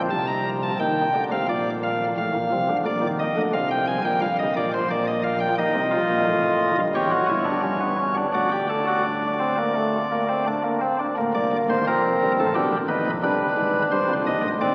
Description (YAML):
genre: classical, baroque-style 3-part fugue for pipe organ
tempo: 88 BPM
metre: 4/4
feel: straight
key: Eb major, G minor from 5.6 s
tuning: A4 = 440 Hz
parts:
  - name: chamber organ, cornet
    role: solo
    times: 0.0-14.7 s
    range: C1 to Bb5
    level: -23 LUFS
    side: equal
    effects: none
room: wet cathedral reverb, RT60 6.1 s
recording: very old 78 rpm record, vinyl crackle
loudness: -23 LUFS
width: mono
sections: 0.1-11.2 A section; 11.2-14.7 B section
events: none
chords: 0.1 F7/C; 1.5 Bb; 2.9 Bb7; 4.2 Eb/G; 5.6 Eb; 6.9 Em13; 8.3 D; 11.2 Gm; 12.6 G7; 13.9 Cm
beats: | 0.11 0.80 1.48 2.17 | 2.85 3.54 4.22 4.90 | 5.58 6.26 6.94 7.63 | 8.34 9.05 9.76 10.46 | 11.17 11.87 12.56 13.24 | 13.92 14.61